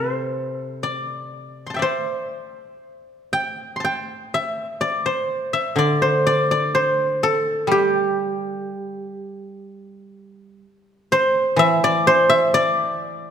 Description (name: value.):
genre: chinese traditional, Chinese solo plucked strings.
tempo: 62 BPM.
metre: 2/4.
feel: uneven beats, rubato.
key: unclear.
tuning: A4 = 442 Hz.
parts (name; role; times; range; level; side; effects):
guzheng; solo; 0.0-13.3 s; C3 to C6; -19 LUFS; equal; none.
room: moderate concert hall reverb, RT60 2.2 s.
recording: minimal, uncompressed stereo recording.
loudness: -18 LUFS.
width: side -8 dB against mid.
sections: 0.0-9.7 A section; 9.7-13.3 B section.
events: none.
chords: none.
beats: 0.83 | 1.84 2.84 | 3.83 4.80 | 5.76 6.73 | 7.69 8.69 | 9.68 10.64 | 11.59 12.53.